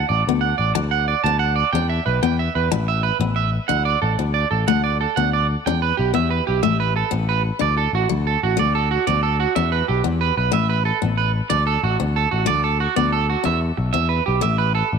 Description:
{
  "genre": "highlife guitar band",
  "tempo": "123 BPM (dotted quarters)",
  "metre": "12/8",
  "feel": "straight",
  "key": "D major",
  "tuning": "A4 = 440 Hz",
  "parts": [
    { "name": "electric guitar at the edge of break-up", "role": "arpeggios", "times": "0.0-14.9 s", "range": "F#4 to A5", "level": "-20 LUFS", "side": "right 9 dB", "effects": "slapback echo" },
    { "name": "picked electric bass", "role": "bass", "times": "0.0-15.0 s", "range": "A1 to E2", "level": "-21 LUFS", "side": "left 2 dB", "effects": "none" },
    { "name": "picked steel-string acoustic guitar", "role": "accompaniment", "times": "0.3-14.6 s", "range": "F#3 to D4", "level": "-25 LUFS", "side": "left 16 dB", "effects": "none" }
  ],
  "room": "moderate plate reverb, RT60 3.1 s",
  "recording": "1960s-style stereo with parts hard left and right",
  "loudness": "-17 LUFS",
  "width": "side -6 dB against mid",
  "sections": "0.0-15.0 A section",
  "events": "none",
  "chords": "0.0 D; 1.7 Em; 2.7 Asus2; 3.7 D; 5.7 Em; 6.6 Asus2; 7.6 D; 9.6 Em; 10.5 Asus2; 11.5 D; 13.5 Em; 14.4 Asus2",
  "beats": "0.27 0.76 1.25 | 1.74 2.23 2.71 3.21 | 3.69 4.18 4.67 5.16 | 5.65 6.14 6.63 7.12 | 7.61 8.09 8.58 9.07 | 9.56 10.04 10.53 11.02 | 11.51 11.99 12.48 12.97 | 13.46 13.94 14.43 14.92"
}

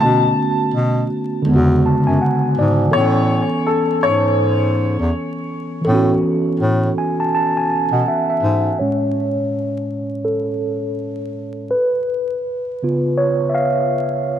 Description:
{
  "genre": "lo-fi hip hop",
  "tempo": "82 BPM",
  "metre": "4/4",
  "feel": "swing 60% on 16ths",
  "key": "A major",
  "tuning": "A4 = 441 Hz",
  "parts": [
    { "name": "dark upright piano", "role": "melody", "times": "0.0-8.0 s", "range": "A4 to A5", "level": "-20 LUFS", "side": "left 2 dB", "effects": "wide subtle chorus, tape echo" },
    { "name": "mellow tine electric piano", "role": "accompaniment", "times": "0.0-14.4 s", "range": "A2 to A5", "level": "-17 LUFS", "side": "right 1 dB", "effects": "slow stereo tremolo, cassette tape, low-pass filter" },
    { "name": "mellow bass clarinet", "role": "bass", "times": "0.0-8.7 s", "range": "E2 to B2", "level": "-18 LUFS", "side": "equal", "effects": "none" }
  ],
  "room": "moderate lush hall reverb, RT60 2.7 s",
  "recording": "dreamy mix soaked in reverb, vinyl crackle",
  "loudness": "-15 LUFS",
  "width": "side -10 dB against mid",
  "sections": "0.0-8.8 A section; 8.8-14.4 B section",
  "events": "tine electric piano fill 1.5-2.9, 6.6-8.8; tine electric piano solo 8.8-14.4; filter sweep on tine electric piano 8.8-14.4",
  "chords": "0.0 Bm7; 1.5 E13; 2.9 Amaj9; 8.8 Amaj7; 11.7 C#7",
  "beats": "| 0.01 0.74 1.47 2.21 | 2.94 3.67 4.40 5.13 | 5.86 6.60 7.33 8.06 | 8.79 9.52 10.25 10.99 | 11.72 12.45 13.18 13.91"
}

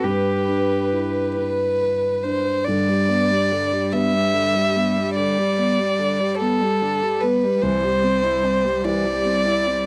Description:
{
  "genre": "neoclassical piano and strings",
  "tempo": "48 BPM (dotted quarters)",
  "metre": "6/8",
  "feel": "rubato",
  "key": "G major",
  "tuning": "A4 = 440 Hz",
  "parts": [
    { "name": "warm violin", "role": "melody", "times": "0.0-9.9 s", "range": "A4 to E5", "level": "-23 LUFS", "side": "equal", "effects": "none" },
    { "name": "rich cello", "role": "second line", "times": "0.0-9.9 s", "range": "G3 to G4", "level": "-28 LUFS", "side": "equal", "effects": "none" },
    { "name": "dark grand piano", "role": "accompaniment", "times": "0.0-9.9 s", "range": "C2 to C5", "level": "-28 LUFS", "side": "equal", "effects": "none" },
    { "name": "dark viola", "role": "accompaniment", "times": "0.0-9.9 s", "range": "D3 to B4", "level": "-29 LUFS", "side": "equal", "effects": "none" }
  ],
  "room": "little or no reverb",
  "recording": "dry, close 1970s-style studio recording",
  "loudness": "-20 LUFS",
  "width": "mono",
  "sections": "0.0-2.7 A section; 2.7-9.9 B section",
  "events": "none",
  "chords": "0.0 G6; 2.7 G; 7.6 C",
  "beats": "| 0.03 1.37 | 2.67 3.93 | 5.17 6.40 | 7.63 8.85"
}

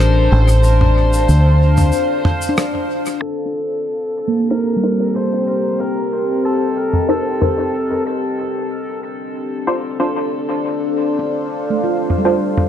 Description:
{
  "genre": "ambient dub",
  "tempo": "93 BPM",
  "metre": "4/4",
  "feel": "swing 53% on 16ths",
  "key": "C dorian",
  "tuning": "A4 = 440 Hz",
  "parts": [
    { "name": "overdriven slide guitar", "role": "melody", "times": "0.0-8.0 s", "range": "A4 to C5", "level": "-22 LUFS", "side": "equal", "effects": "tape echo" },
    { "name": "deep dark ambient pad", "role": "sustained chords", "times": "0.0-12.7 s", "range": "C4 to A5", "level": "-20 LUFS", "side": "left 2 dB", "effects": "chorus, built-in reverb" },
    { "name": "fingered electric bass", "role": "bass", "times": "0.0-1.9 s", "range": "A1 to D2", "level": "-11 LUFS", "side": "equal", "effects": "none" },
    { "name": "damped 70s drum kit", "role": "drums", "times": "0.0-7.6, 12.1-12.7 s", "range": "rim click, shaker, toms", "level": "-20 LUFS", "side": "equal", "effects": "low-pass filter on toms, low-pass filter on snare, low-pass filter on perc, low-pass filter on room, dub echo" },
    { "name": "handpan", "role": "arpeggios", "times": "2.5-6.7, 11.2-12.7 s", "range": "G3 to F4", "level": "-21 LUFS", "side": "right 3 dB", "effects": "low-pass filter, tape echo" },
    { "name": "filtered dub chord stab", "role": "stabs", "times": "4.5-12.4 s", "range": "D4 to C5", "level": "-22 LUFS", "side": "equal", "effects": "phaser, wide subtle chorus, dub echo" }
  ],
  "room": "moderate echo chamber reverb, RT60 2.0 s",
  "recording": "dark, warm production, low-pass filter",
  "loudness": "-15 LUFS",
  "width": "side -10 dB against mid",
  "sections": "0.0-3.2 A section; 3.2-12.7 B section",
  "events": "break 1.9-3.2; filter sweep on synth stab 3.2-12.7; filter sweep on handpan 3.2-12.7",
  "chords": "0.0 Dm7; 3.2 Cm7; 8.4 Dm7",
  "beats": "| 0.64 1.28 1.93 2.58 | 3.22 3.87 4.51 5.16 | 5.80 6.45 7.09 7.74 | 8.38 9.03 9.67 10.32 | 10.96 11.61 12.25"
}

